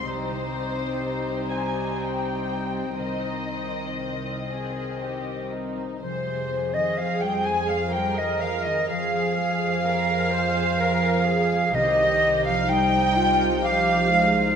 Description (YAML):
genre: cinematic, emotional film score for orchestra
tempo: 58-65 BPM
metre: 3/4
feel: rubato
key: F minor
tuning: A4 = 440 Hz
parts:
  - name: dark studio violin section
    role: melody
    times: 0.0-14.5 s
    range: Eb4 to Ab5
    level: -34 LUFS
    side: left 3 dB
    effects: none
  - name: concert harp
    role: arpeggios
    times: 0.0-14.6 s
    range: C3 to C6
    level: -32 LUFS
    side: left 7 dB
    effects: none
  - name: warm studio cello section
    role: bass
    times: 0.0-14.6 s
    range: C2 to Ab3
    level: -30 LUFS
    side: right 4 dB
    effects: none
  - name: dark studio violin section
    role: second line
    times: 0.1-14.6 s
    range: C4 to Ab5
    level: -29 LUFS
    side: left 2 dB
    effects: none
  - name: dark studio viola section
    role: accompaniment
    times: 0.1-14.6 s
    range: Eb3 to C5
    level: -30 LUFS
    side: right 1 dB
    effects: none
  - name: silver concert flute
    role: second line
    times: 6.0-14.6 s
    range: C5 to Ab5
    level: -23 LUFS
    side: right 1 dB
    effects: none
  - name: warm studio double bass section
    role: bass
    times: 6.0-14.5 s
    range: C2 to F2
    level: -32 LUFS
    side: right 4 dB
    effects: none
  - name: timpani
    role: percussion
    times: 11.7-13.1 s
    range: C3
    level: -34 LUFS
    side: right 2 dB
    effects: none
room: wet scoring stage reverb, RT60 1.6 s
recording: minimal, uncompressed stereo recording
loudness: -22 LUFS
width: side -7 dB against mid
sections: 0.0-6.0 A section; 6.0-14.6 A section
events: none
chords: 0.1 Cm; 6.0 Fm; 11.8 Cm